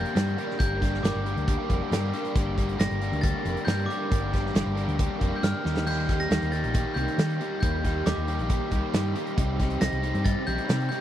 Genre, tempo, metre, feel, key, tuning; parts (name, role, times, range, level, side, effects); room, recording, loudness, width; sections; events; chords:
indie rock; 137 BPM; 4/4; straight; G minor; A4 = 440 Hz
glockenspiel with hard plastic mallets; melody; 0.0-11.0 s; D6 to Bb6; -34 LUFS; equal; tape echo
overdriven electric guitar; riff; 0.0-11.0 s; G2 to G4; -32 LUFS; left 10 dB
overdriven electric guitar; riff; 0.0-11.0 s; G2 to Bb4; -33 LUFS; right 10 dB; ensemble chorus
hollow-body short-scale fingered electric bass; bass; 0.0-10.9 s; F1 to Eb3; -29 LUFS; equal
loose indie drum kit; drums; 0.1-11.0 s; crash cymbal, hi-hat, kick drum, snare drum; -27 LUFS; equal
little or no reverb; dry, close 1970s-style studio recording; -24 LUFS; side -11 dB against mid
0.0-11.0 A section
drum fill 5.6
0.0 Gm; 5.6 Eb